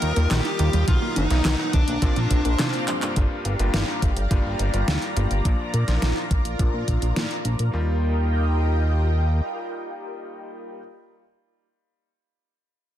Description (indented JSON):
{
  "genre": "synthwave",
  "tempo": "105 BPM",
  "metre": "4/4",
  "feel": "straight",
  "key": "Eb major",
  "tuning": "A4 = 440 Hz",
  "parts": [
    { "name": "dark smooth lead guitar", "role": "melody", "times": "0.0-2.8 s", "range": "D4 to Bb4", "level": "-28 LUFS", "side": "left 2 dB", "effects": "overdrive, ping-pong delay" },
    { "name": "string machine, violins", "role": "second line", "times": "0.0-2.8 s", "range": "D4 to Bb4", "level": "-34 LUFS", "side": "equal", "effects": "ensemble chorus" },
    { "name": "analog string pad", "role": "sustained chords", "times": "0.0-10.8 s", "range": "F4 to Eb6", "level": "-30 LUFS", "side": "equal", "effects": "ensemble chorus, phaser, sidechain pumping" },
    { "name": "wide unison pluck", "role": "arpeggios", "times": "0.0-3.1 s", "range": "C3 to Eb4", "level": "-30 LUFS", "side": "right 3 dB", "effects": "flanger, ping-pong delay" },
    { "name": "bright electric grand piano", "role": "stabs", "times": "0.0-10.8 s", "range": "G2 to G4", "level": "-32 LUFS", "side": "left 2 dB", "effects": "low-pass filter, ping-pong delay" },
    { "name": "chorused synth bass", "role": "bass", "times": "0.0-9.4 s", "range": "F#1 to Bb2", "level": "-22 LUFS", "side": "equal", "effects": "none" },
    { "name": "pop drum kit", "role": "drums", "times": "0.0-7.7 s", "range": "handclaps, hi-hat, snare drum", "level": "-28 LUFS", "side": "equal", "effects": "overdrive" },
    { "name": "electronic kick drum", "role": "drums", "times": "0.9-7.0 s", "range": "none", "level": "-22 LUFS", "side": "equal", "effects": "overdrive" }
  ],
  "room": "light reverb",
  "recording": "dense, heavily limited modern master",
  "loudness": "-20 LUFS",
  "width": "side -11 dB against mid",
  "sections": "0.0-3.2 A section; 3.2-7.7 B section; 7.7-10.0 C section",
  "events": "break 2.6-3.2; drum fill 2.9; filter sweep on analog synth bass 3.2-7.7; filter sweep on electric grand piano 3.2-7.7",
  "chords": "0.0 Ebadd9; 0.9 Bmaj7; 2.0 Bbadd9; 3.2 Gm7; 5.4 Bb; 7.7 Ebadd9"
}